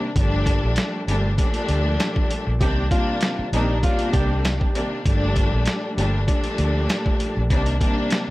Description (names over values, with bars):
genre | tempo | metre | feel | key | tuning
hip hop, boom-bap hip-hop | 98 BPM | 4/4 | swing 55% on 16ths | G minor | A4 = 440 Hz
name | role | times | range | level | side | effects
warm studio string section | accompaniment | 0.0-8.3 s | Bb2 to D4 | -24 LUFS | left 1 dB | high-pass filter, low-pass filter
vintage muted fingered electric bass | bass | 0.2-7.8 s | G1 to D2 | -22 LUFS | equal | none
boom bap sampler-style drum kit | drums | 0.2-8.3 s | hi-hat, kick drum, snare drum | -22 LUFS | equal | none
flamenco guitar | melody | 2.6-4.4 s | Eb4 to G4 | -29 LUFS | equal | high-pass filter, low-pass filter, tape echo
room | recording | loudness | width
little or no reverb | dry, gritty hardware recording, vinyl crackle | -19 LUFS | side -18 dB against mid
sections
0.0-8.3 A section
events
none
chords
0.2 Gm9; 2.6 Cm9; 5.1 Gm9; 7.5 Cm9